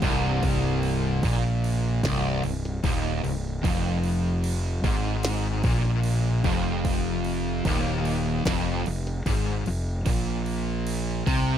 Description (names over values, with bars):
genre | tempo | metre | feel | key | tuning
stoner and doom metal | 75 BPM | 4/4 | straight | unclear | A4 = 440 Hz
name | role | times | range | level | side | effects
fuzz guitar | riff | 0.0-11.6 s | C2 to C3 | -25 LUFS | equal | distortion
fuzz fingered electric bass | bass | 0.0-11.6 s | C1 to C2 | -29 LUFS | equal | overdrive
glitchy drum kit | drums | 0.0-11.5 s | crash cymbal, kick drum, snare drum | -30 LUFS | equal | none
room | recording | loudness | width
digital ambience | none | -23 LUFS | side -9 dB against mid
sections
0.0-11.6 A section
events
none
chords
0.0 Cm; 3.6 Ebsus24; 10.1 Bb5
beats
| 0.42 1.23 2.03 2.84 | 3.64 4.45 5.25 6.05 | 6.86 7.66 8.46 9.26 | 10.06 10.87